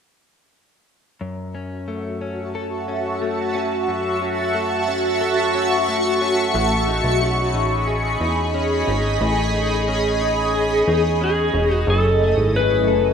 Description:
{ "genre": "dream pop", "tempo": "90 BPM", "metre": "4/4", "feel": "straight", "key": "F# dorian", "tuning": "A4 = 440 Hz", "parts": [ { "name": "shimmering ambient pad", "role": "sustained chords", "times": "2.1-13.1 s", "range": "F#3 to C#6", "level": "-20 LUFS", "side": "right 1 dB", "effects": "chorus, built-in reverb, phaser" }, { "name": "direct-recorded clean electric guitar", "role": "arpeggios", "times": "1.2-13.1 s", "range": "F#2 to A4", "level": "-27 LUFS", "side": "left 3 dB", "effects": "wide subtle chorus, ping-pong delay" }, { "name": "plucky analog bass", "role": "bass", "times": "6.5-13.1 s", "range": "E1 to E2", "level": "-22 LUFS", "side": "equal", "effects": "none" }, { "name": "clean lap steel guitar", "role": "melody", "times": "11.2-13.1 s", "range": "G#4 to B4", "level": "-19 LUFS", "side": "left 3 dB", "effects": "ping-pong delay" } ], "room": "moderate lush hall reverb, RT60 2.5 s", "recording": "rough home demo mix", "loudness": "-18 LUFS", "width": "side -7 dB against mid", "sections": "1.2-11.9 A section; 11.9-13.1 B section", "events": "none", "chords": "1.2 F#m7; 6.5 Amaj9#11; 11.9 F#m7" }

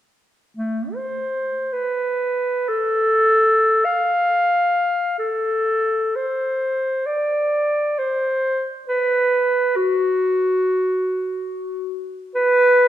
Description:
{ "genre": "classical, free, expressive piece for unaccompanied clarinet", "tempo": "free time", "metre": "none", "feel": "none", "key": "A dorian", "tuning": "A4 = 441 Hz", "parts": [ { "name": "mellow clarinet", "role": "solo", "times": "0.6-12.9 s", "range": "A3 to F5", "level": "-18 LUFS", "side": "equal", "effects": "none" } ], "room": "moderate concert hall reverb, RT60 2.2 s", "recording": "minimal, uncompressed stereo recording", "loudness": "-18 LUFS", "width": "side -12 dB against mid", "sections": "0.6-5.2 A section; 5.2-12.9 B section", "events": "none", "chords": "none" }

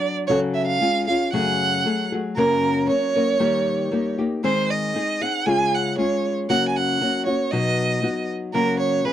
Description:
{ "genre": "mexican folk, mariachi", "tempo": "117 BPM", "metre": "2/4", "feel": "straight", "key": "F# major", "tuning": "A4 = 440 Hz", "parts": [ { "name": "clear violin", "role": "melody", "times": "0.0-9.1 s", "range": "A#4 to G#5", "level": "-22 LUFS", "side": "right 4 dB", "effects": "none" }, { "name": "nylon-string guitar", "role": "accompaniment", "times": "0.0-9.1 s", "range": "F#2 to A#4", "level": "-22 LUFS", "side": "left 3 dB", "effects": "none" } ], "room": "light reverb", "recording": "dry, close 1970s-style studio recording", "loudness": "-19 LUFS", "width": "side -11 dB against mid", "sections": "0.0-2.4 A section; 2.4-9.1 B section", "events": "none", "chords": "0.3 F#m/C#; 0.8 C#; 1.3 F#madd9; 2.4 F#; 3.4 D#; 4.4 G#/D#; 5.5 C#; 6.5 F#/C#; 7.5 B; 8.5 F#/C#" }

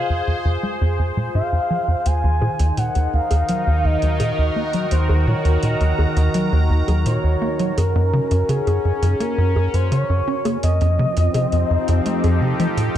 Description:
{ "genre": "ambient, sequencer-driven space music", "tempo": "84 BPM", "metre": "4/4", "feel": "straight", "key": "Eb dorian", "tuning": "A4 = 440 Hz", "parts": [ { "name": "expressive synth lead", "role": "melody", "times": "0.0-12.7 s", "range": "Ab4 to Ab5", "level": "-24 LUFS", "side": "equal", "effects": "chorus, analog delay" }, { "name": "sweeping resonant pad", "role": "sustained chords", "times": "0.0-13.0 s", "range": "Eb3 to Bb5", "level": "-24 LUFS", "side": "equal", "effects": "chorus" }, { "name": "tight sequencer bass", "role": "riff", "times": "0.0-13.0 s", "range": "Eb2 to Db4", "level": "-18 LUFS", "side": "equal", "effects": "analog chorus, analog delay" }, { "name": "electronic hi-hat and bongos", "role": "percussion", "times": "2.1-13.0 s", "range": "none", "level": "-33 LUFS", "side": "equal", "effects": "overdrive, analog delay" } ], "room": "moderate lush hall reverb, RT60 2.8 s", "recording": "dark, warm production", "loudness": "-17 LUFS", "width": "side -11 dB against mid", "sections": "0.0-13.0 A section", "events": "filter sweep on analog synth bass 0.0-13.0", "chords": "0.0 Fm; 2.1 Ebm; 7.8 Gb; 10.6 F7" }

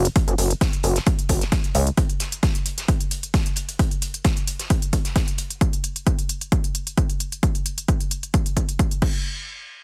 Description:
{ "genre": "driving peak-time techno", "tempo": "132 BPM", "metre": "4/4", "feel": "straight", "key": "unclear", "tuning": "A4 = 439 Hz", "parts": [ { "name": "gritty driven synth bass", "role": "bass", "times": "0.0-1.9 s", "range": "F#1 to C#2", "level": "-22 LUFS", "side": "equal", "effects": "sidechain pumping" }, { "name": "loose indie drum kit", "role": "drums", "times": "0.1-5.5 s", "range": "hi-hat, snare drum", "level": "-37 LUFS", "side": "equal", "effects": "sidechain pumping on hats, high-pass filter on hats, high-pass filter on snare, high-pass filter on room" }, { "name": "techno drum kit", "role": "drums", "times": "0.1-9.1 s", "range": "crash cymbal, hi-hat", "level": "-31 LUFS", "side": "equal", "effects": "sidechain pumping on hats, sidechain pumping on cymbals" }, { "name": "electronic kick drum", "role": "drums", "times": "0.2-9.1 s", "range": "none", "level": "-24 LUFS", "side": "equal", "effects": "none" } ], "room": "little or no reverb", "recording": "heavily compressed radio sound, multiband compression", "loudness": "-23 LUFS", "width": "mono", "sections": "0.0-9.2 A section", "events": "filter sweep on analog synth bass 0.0-2.0", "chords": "none" }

